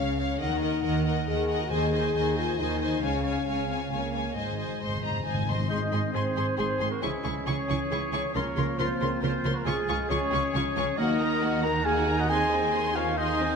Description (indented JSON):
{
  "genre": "cinematic",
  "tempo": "136 BPM",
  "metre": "3/4",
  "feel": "straight",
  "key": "Ab mixolydian",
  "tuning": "A4 = 440 Hz",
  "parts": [
    { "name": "warm symphonic violin section", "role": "melody", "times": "0.0-13.6 s", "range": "F5 to Db6", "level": "-34 LUFS", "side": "left 4 dB", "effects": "none" },
    { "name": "rich symphonic violin section", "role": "second line", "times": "0.0-13.6 s", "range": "Gb4 to F5", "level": "-37 LUFS", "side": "left 3 dB", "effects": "none" },
    { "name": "rich studio viola section", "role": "accompaniment", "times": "0.0-13.6 s", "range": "Bb3 to Db5", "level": "-36 LUFS", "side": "right 1 dB", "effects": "none" },
    { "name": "warm French horn section", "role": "sustained chords", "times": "0.0-13.6 s", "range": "Ab3 to Bb4", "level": "-32 LUFS", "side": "left 5 dB", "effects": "none" },
    { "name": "dark symphonic cello section", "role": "bass", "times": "0.0-13.6 s", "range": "Ab2 to Eb3", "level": "-33 LUFS", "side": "right 2 dB", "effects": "none" },
    { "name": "warm studio double bass section", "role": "bass", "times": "0.0-13.6 s", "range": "Ab1 to Eb2", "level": "-33 LUFS", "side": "right 4 dB", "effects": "none" },
    { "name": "timpani", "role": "percussion", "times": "1.7-2.3, 4.4-5.6 s", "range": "Ab2 to Eb3", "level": "-34 LUFS", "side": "left 3 dB", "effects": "none" },
    { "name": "mellow clarinet", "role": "second line", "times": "5.7-13.6 s", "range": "Ab4 to Bb5", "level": "-37 LUFS", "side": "left 1 dB", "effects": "none" },
    { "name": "warm oboe", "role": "second line", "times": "5.7-13.6 s", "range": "Fb4 to Gb5", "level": "-35 LUFS", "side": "left 1 dB", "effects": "none" },
    { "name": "dark trombone section", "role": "sustained chords", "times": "5.7-12.4 s", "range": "Eb3 to Db4", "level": "-36 LUFS", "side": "right 4 dB", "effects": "none" },
    { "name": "warm trumpet section", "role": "stabs", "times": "5.7-13.6 s", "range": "Ab4 to Bb5", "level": "-31 LUFS", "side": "right 2 dB", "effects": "none" }
  ],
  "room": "wet scoring stage reverb, RT60 1.5 s",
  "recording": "none",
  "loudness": "-25 LUFS",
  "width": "side -6 dB against mid",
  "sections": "0.0-5.7 A section; 5.7-13.6 A section",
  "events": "timpani fill 4.4-5.7",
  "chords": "0.4 Ebm; 1.7 Ab/Eb; 3.0 Db; 4.4 Ab; 7.0 Dbm; 8.3 Bbmadd9/Db; 9.7 Db; 11.0 Ebm; 12.3 Ab/Eb"
}